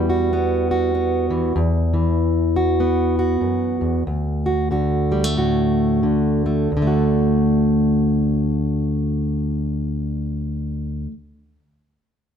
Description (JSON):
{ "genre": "folk, solo fingerstyle acoustic guitar", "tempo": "85-98 BPM", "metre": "4/4", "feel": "swing 61% on 8ths", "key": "D major", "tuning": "A4 = 440 Hz", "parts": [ { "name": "fingerpicked plugged-in steel-string acoustic guitar", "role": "solo", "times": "0.0-11.1 s", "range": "D2 to F#4", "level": "-18 LUFS", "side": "equal", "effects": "none" } ], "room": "light reverb", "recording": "close, detailed microphones", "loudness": "-18 LUFS", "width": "side -8 dB against mid", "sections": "0.0-4.0 A section; 4.0-6.7 B section; 6.7-9.6 C section", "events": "slowing down 1.6-6.7", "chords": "0.0 Emadd9; 4.0 D" }